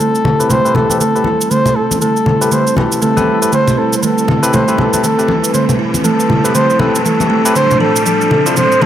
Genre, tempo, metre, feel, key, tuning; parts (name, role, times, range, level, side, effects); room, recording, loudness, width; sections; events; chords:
afro house; 119 BPM; 4/4; swing 60% on 16ths; A minor; A4 = 443 Hz
trumpet with bucket mute; melody; 0.0-8.9 s; A4 to C5; -15 LUFS; left 1 dB; dub echo
warm analog pad; sustained chords; 0.0-8.9 s; A2 to B4; -21 LUFS; right 1 dB; chorus
buzzing kalimba; arpeggios; 0.0-8.9 s; A3 to A4; -18 LUFS; right 4 dB; low-pass filter
electronic toms and shaker; drums; 0.0-8.9 s; -19 LUFS; equal
riser; sound effects; 0.0-8.9 s; -23 LUFS; equal
congas; percussion; 0.2-8.9 s; -18 LUFS; left 2 dB
barky tine electric piano; stabs; 0.4-8.5 s; C4 to C5; -20 LUFS; left 3 dB; low-pass filter, dub echo
moderate plate reverb, RT60 1.7 s, small room ambience; high-pass filter; -10 LUFS; side -10 dB against mid
0.0-8.9 A section
build-up 0.0-8.9; drum fill 0.0-8.9; riser 0.0-8.9; filter sweep on kalimba 0.0-8.9; filter sweep on tine electric piano 0.0-8.9; filter sweep on analog synth pad 0.0-8.9
0.0 Am7; 7.6 Dm7/A